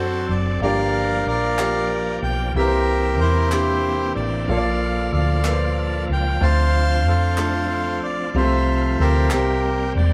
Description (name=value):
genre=slow gospel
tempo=62 BPM (dotted quarters)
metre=6/8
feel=straight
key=unclear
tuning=A4 = 440 Hz
part: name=accordion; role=melody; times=0.0-10.1 s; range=E4 to A5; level=-25 LUFS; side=equal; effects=none
part: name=clear grand piano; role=accompaniment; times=0.0-10.1 s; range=G2 to D5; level=-27 LUFS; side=equal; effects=none
part: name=bright tonewheel organ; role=sustained chords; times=0.0-10.1 s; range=E3 to A4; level=-31 LUFS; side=equal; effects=slow rotary speaker, overdrive, chorus vibrato
part: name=hollow-body short-scale fingered electric bass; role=bass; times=0.0-10.1 s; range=E1 to F#2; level=-24 LUFS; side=equal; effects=none
part: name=group handclap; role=percussion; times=1.6-9.6 s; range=none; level=-31 LUFS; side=equal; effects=none
room=wet studio reverb, RT60 0.6 s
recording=band playing live in one room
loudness=-20 LUFS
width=mono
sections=0.0-10.1 A section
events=none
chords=0.0 D7; 0.6 Gm7; 2.6 C7; 4.5 Bbmaj7; 6.4 Dm7; 8.3 F/C; 9.3 C7